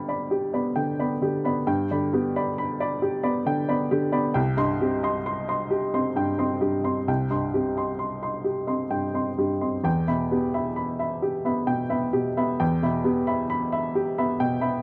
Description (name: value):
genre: neoclassical minimalist piano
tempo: 66 BPM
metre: 3/4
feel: rubato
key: unclear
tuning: A4 = 440 Hz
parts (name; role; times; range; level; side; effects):
- warm upright piano; solo; 0.0-14.8 s; C2 to C6; -25 LUFS; equal; none
room: light reverb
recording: dry, close 1970s-style studio recording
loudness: -25 LUFS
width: mono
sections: 0.0-14.8 A section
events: none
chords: 0.0 G; 4.4 Cm; 9.9 Em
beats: 0.77 | 1.68 2.58 3.48 | 4.37 5.26 6.17 | 7.08 8.00 8.93 | 9.86 10.78 11.70 | 12.61 13.52 14.41